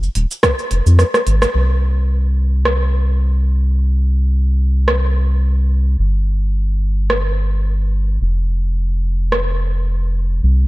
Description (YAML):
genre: organic downtempo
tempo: 108 BPM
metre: 4/4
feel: swing 55% on 16ths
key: unclear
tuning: A4 = 440 Hz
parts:
  - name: round analog bass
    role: bass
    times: 0.0-10.7 s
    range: Eb1 to F2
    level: -14 LUFS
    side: equal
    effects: sidechain pumping
  - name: organic electronic drum kit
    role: drums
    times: 0.0-9.4 s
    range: hi-hat, rim click, shaker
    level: -19 LUFS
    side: equal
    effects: none
  - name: electronic kick drum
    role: drums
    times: 0.4-0.6 s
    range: none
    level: -17 LUFS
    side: equal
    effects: none
room: little or no reverb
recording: dark, warm production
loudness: -14 LUFS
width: side -20 dB against mid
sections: 0.0-1.5 A section; 1.5-10.7 B section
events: kick drops out 1.0-1.5; drum fill 1.0-1.5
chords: none